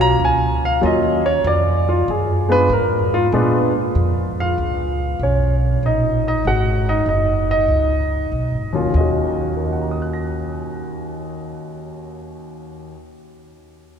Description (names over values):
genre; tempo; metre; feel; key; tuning
jazz piano trio; 96 BPM; 4/4; swing 68% on 8ths; Eb minor; A4 = 444 Hz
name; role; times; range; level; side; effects
warm concert grand piano; melody; 0.0-13.2 s; Eb2 to Bb6; -19 LUFS; equal; none
upright bass; bass; 0.0-12.9 s; Gb1 to Bb2; -20 LUFS; right 1 dB; none
room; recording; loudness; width
wet cathedral reverb, RT60 5.6 s; recorded in a church or concert hall; -16 LUFS; side -7 dB against mid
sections
0.0-3.9 A section; 3.9-8.9 B section; 8.9-11.4 C section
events
grand piano solo 0.0-3.9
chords
0.0 Ebm7; 1.4 Bb7b9; 3.9 Bbmadd11; 6.4 Ab7sus4; 8.9 Ebm7